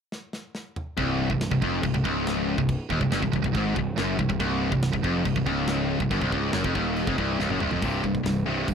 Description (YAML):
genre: heavy metal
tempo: 140 BPM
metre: 4/4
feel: straight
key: C minor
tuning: A4 = 441 Hz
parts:
  - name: tight metal drum kit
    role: drums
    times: 0.1-8.7 s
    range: china cymbal, hi-hat, kick drum, snare drum, toms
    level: -33 LUFS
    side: equal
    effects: none
  - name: heavy high-gain guitar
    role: riff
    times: 1.0-8.7 s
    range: C2 to C3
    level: -27 LUFS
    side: right 10 dB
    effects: distortion
  - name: tight distorted guitar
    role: riff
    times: 1.0-8.7 s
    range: C2 to C3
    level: -27 LUFS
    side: left 10 dB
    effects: distortion
  - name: fuzz picked electric bass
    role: bass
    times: 1.0-8.7 s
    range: C1 to Ab1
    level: -30 LUFS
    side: equal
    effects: overdrive
room: studio reverb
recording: rough home demo mix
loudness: -23 LUFS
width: side -7 dB against mid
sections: 1.0-7.8 A section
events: drum fill 0.1-1.0, 7.4-7.8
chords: 0.0 N.C.; 1.0 Cm; 7.8 C5